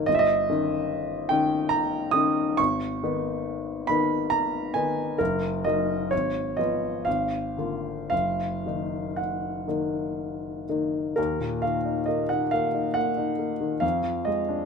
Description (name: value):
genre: classical, romantic nocturne for solo piano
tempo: 54-75 BPM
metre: 3/4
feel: rubato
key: Eb minor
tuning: A4 = 436 Hz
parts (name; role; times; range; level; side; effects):
- clear grand piano; solo; 0.0-14.7 s; Gb1 to Eb6; -24 LUFS; equal; none
room: light reverb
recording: minimal, uncompressed stereo recording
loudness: -24 LUFS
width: side -5 dB against mid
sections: 0.0-11.2 A section; 11.2-14.7 A section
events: none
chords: 0.1 Eb7/G; 2.6 Abm; 5.2 Ebm/Gb; 6.1 Fdim/Ab; 7.1 Bb7/Ab; 8.1 Ebm/Gb; 11.2 Ebm; 13.8 Bb7/F (rootless)